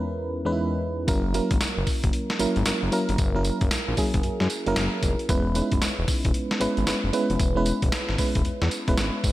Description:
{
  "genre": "R&B, new jack swing",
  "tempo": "114 BPM",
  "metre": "4/4",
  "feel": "swing 63% on 16ths",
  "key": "unclear",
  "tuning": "A4 = 444 Hz",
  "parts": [
    { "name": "FM electric piano with tremolo", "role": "accompaniment", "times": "0.0-9.3 s", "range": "E2 to B4", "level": "-26 LUFS", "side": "right 1 dB", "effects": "none" },
    { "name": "fat analog bass", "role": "bass", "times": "1.1-9.3 s", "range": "E1 to F#2", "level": "-27 LUFS", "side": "left 1 dB", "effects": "none" },
    { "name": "boom bap sampler-style drum kit", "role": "drums", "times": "1.1-9.3 s", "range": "hi-hat, kick drum, snare drum, tambourine", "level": "-25 LUFS", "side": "left 1 dB", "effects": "gated reverb" }
  ],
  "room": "digital ambience",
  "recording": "none",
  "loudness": "-22 LUFS",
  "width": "side -16 dB against mid",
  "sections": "0.0-9.3 A section",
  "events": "none",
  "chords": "0.0 C#m7/E; 1.1 F#7; 5.3 C#m7/E",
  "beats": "0.03 0.55 | 1.08 1.61 2.13 2.66 | 3.19 3.71 4.24 4.76 | 5.29 5.82 6.34 6.87 | 7.39 7.92 8.45 8.97"
}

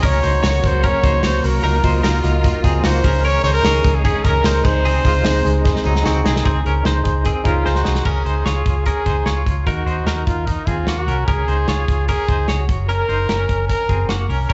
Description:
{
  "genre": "jangly indie pop",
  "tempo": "149 BPM",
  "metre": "4/4",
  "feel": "straight",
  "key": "Db major",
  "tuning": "A4 = 440 Hz",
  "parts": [
    { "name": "mellow trumpet", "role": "melody", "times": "0.0-14.1 s", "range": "Eb4 to Db5", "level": "-24 LUFS", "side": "equal", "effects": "slapback echo" },
    { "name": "reed electric piano", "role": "accompaniment", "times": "0.0-8.1 s", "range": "Db4 to Eb5", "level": "-27 LUFS", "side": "equal", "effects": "slapback echo" },
    { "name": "rich symphonic string section", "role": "sustained chords", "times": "0.0-6.4 s", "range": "C3 to Gb4", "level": "-29 LUFS", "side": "equal", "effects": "none" },
    { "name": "semi-hollow electric guitar", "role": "arpeggios", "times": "0.0-14.5 s", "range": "Gb3 to Db5", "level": "-26 LUFS", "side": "equal", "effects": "tremolo, slapback echo" },
    { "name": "vintage muted fingered electric bass", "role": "bass", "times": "0.0-14.5 s", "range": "Gb1 to Eb2", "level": "-22 LUFS", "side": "equal", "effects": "none" },
    { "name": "loose indie drum kit", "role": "drums", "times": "0.0-14.5 s", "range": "crash cymbal, hi-hat, kick drum, snare drum", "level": "-23 LUFS", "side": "equal", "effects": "none" },
    { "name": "tambourine", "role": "percussion", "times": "0.0-6.3 s", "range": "none", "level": "-40 LUFS", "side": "equal", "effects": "none" }
  ],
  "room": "light reverb, small room ambience",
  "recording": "live gig heard through the venue's PA, club reverb, nothing above 7.9 kHz",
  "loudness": "-17 LUFS",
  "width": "mono",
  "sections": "0.0-6.5 A section; 6.5-8.1 B section; 8.1-14.5 C section",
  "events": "drum fill 5.6-6.5, 7.7-8.1",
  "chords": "0.0 Gb/Db; 1.6 Ebmadd9/Db; 3.0 Dbsus2; 4.6 Ab/Db; 8.1 Db; 9.7 Ebm; 11.3 Db; 12.7 Gb",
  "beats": "| 0.03 0.43 0.83 1.24 | 1.64 2.04 2.44 2.84 | 3.24 3.64 4.04 4.45 | 4.85 5.25 5.65 6.05 | 6.45 6.85 7.26 7.66 | 8.06 8.46 8.87 9.27 | 9.67 10.07 10.48 10.88 | 11.28 11.69 12.09 12.49 | 12.89 13.30 13.70 14.10 | 14.50"
}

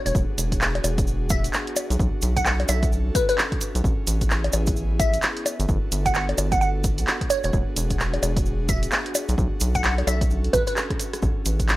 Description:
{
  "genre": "UK garage, two-step garage",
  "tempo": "130 BPM",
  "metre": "4/4",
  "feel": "swing 60% on 16ths",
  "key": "unclear",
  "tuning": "A4 = 438 Hz",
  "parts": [
    { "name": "airy breathy pad", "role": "sustained chords", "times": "0.0-11.8 s", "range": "B3 to A4", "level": "-33 LUFS", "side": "equal", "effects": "chorus, sidechain pumping" },
    { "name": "glassy wavetable pluck", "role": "melody", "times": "0.1-10.7 s", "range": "B4 to F#5", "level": "-26 LUFS", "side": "equal", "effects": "chorus, tape echo" },
    { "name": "rubbery square bass", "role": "bass", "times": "0.1-11.8 s", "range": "E1 to B1", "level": "-24 LUFS", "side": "equal", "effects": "none" },
    { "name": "electronic kick drum", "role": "drums", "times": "0.1-11.7 s", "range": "none", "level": "-26 LUFS", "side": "equal", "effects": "none" },
    { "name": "punchy analog drum machine", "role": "drums", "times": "0.1-11.8 s", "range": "bongos, handclaps, hi-hat, rim click", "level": "-26 LUFS", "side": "equal", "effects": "none" },
    { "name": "cabasa", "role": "percussion", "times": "0.1-11.8 s", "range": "none", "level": "-32 LUFS", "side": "right 3 dB", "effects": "none" }
  ],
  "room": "little or no reverb",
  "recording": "dry, gritty hardware recording",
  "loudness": "-20 LUFS",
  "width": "side -17 dB against mid",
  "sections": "0.0-11.8 A section",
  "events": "drum fill 10.8-11.2",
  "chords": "0.0 E9; 2.0 Bm9; 3.8 Amaj9; 5.5 Gmaj9; 7.3 E9; 9.4 Bm9; 11.2 Amaj9",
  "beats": "| 0.15 0.61 1.07 1.53 | 2.00 2.46 2.92 3.38 | 3.84 4.30 4.76 5.23 | 5.69 6.15 6.61 7.07 | 7.53 8.00 8.46 8.92 | 9.38 9.84 10.30 10.77 | 11.23 11.69"
}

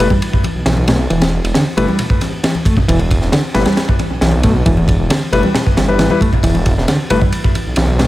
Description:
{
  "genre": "breakbeat, breaks",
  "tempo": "135 BPM",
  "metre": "4/4",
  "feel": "straight",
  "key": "E minor",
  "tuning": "A4 = 440 Hz",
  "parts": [
    { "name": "reed electric piano", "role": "riff", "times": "0.0-8.1 s", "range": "D3 to A3", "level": "-19 LUFS", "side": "equal", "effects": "fast tremolo, tube saturation, analog delay" },
    { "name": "warm grand piano", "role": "stabs", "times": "0.0-7.2 s", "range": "G3 to B4", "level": "-20 LUFS", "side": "left 3 dB", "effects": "low-pass filter, analog delay" },
    { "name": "detuned saw bass", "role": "bass", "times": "0.0-8.1 s", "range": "E1 to B1", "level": "-17 LUFS", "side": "equal", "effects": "none" },
    { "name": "crunchy breakbeat drum kit", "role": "drums", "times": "0.0-8.1 s", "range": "kick drum, ride cymbal, snare drum", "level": "-15 LUFS", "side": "equal", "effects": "analog delay" },
    { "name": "congas", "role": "percussion", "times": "0.1-8.1 s", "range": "none", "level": "-23 LUFS", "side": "left 2 dB", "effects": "analog delay" }
  ],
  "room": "light reverb",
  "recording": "echo-heavy mix",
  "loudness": "-12 LUFS",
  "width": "side -16 dB against mid",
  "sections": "0.0-8.1 A section",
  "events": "none",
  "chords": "0.0 Em",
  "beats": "0.21 0.66 | 1.10 1.55 1.99 2.44 | 2.88 3.33 3.77 4.21 | 4.66 5.10 5.55 5.99 | 6.44 6.88 7.33 7.77"
}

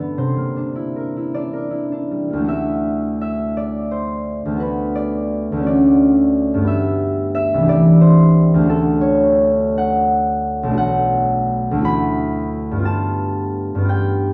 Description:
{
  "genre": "classical, solo harp piece",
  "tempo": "51-60 BPM (dotted quarters)",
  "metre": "6/8",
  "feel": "rubato",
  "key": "D mixolydian",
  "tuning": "A4 = 440 Hz",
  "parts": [
    { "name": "concert harp", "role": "solo", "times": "0.0-14.3 s", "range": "B1 to B5", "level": "-18 LUFS", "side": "equal", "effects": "none" }
  ],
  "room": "light reverb",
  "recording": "close, detailed microphones",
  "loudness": "-18 LUFS",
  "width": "mono",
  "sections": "0.0-2.5 A section; 2.5-14.3 B section",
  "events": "none",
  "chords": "0.2 C9; 2.5 Dadd9; 4.6 D6; 5.7 Dmaj7; 6.7 G69; 7.7 Cadd9; 8.7 Dmaj7; 10.8 Bm7; 11.9 Dadd9; 12.9 G9",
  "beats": "| 0.19 1.35 | 2.49 3.57 | 4.62 5.66 | 6.68 7.69 | 8.70 9.78 | 10.79 11.86 | 12.87 13.88"
}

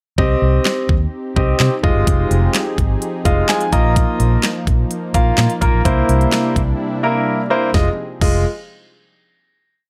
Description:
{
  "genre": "dance-pop",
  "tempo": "127 BPM",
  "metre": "4/4",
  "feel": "straight",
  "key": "F dorian",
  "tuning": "A4 = 439 Hz",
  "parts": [
    { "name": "warm concert grand piano", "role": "accompaniment", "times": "0.2-8.4 s", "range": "Ab3 to Bb5", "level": "-20 LUFS", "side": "equal", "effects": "sidechain pumping" },
    { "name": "warm analog pad", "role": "sustained chords", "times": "0.2-8.0 s", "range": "C3 to Ab4", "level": "-27 LUFS", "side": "equal", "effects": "chorus, sidechain pumping" },
    { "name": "vintage muted fingered electric bass", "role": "bass", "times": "0.2-8.4 s", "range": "F1 to C3", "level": "-19 LUFS", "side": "equal", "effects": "sidechain pumping" },
    { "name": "pop drum kit", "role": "drums", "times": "0.2-8.3 s", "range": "crash cymbal, handclaps, hi-hat, kick drum, snare drum", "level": "-20 LUFS", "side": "equal", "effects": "none" }
  ],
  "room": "little or no reverb",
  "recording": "dry, gritty hardware recording",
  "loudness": "-16 LUFS",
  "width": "mono",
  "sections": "0.2-7.7 bridge; 7.7-9.6 final chord",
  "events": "grand piano fill 3.0-4.0; break 6.8-7.7",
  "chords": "0.2 Cm; 1.8 Fm7; 3.7 Bbsus4; 5.9 C7; 7.7 Fm7",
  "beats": "| 0.18 0.66 1.13 1.60 | 2.07 2.54 3.02 3.49 | 3.96 4.43 4.91 5.38 | 5.85 6.32 6.80 7.27 | 7.74 8.21"
}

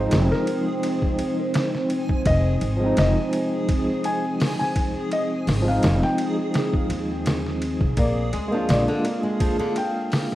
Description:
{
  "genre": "trip hop",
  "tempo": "84 BPM",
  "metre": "4/4",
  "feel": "swing 54% on 16ths",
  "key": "F dorian",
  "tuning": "A4 = 440 Hz",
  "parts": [
    { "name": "felt-muted upright piano", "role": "melody", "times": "0.0-10.3 s", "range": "Bb4 to Ab5", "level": "-29 LUFS", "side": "left 1 dB", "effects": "dub echo" },
    { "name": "overdriven tine electric piano", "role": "accompaniment", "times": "0.0-10.3 s", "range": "F3 to F4", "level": "-26 LUFS", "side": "equal", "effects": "fast tremolo, vintage 12-bit sampler grit" },
    { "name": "deep dark ambient pad", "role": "sustained chords", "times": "0.0-10.3 s", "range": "C4 to F5", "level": "-29 LUFS", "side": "equal", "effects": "chorus, built-in reverb" },
    { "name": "upright bass", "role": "bass", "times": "0.0-8.9 s", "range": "F1 to Eb2", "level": "-24 LUFS", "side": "equal", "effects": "none" },
    { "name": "backwards swelling texture", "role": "texture", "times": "0.0-10.3 s", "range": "Ab4", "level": "-34 LUFS", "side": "right 1 dB", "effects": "built-in reverb" },
    { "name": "trip hop sampler-style drum kit", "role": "drums", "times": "0.1-10.3 s", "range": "hi-hat, kick drum, ride cymbal, snare drum", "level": "-25 LUFS", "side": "equal", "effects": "none" },
    { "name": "flamenco guitar", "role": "arpeggios", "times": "8.0-9.8 s", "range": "D3 to Bb3", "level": "-28 LUFS", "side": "left 1 dB", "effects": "tape echo" }
  ],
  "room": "light reverb, digital ambience",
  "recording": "rough home demo mix, vinyl crackle",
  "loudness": "-20 LUFS",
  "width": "side -15 dB against mid",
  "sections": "0.0-10.3 A section",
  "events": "none",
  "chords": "0.0 Fm7; 8.0 Bb7",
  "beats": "0.12 0.83 1.55 | 2.26 2.97 3.69 4.40 | 5.12 5.83 6.55 7.26 | 7.97 8.69 9.40 10.12"
}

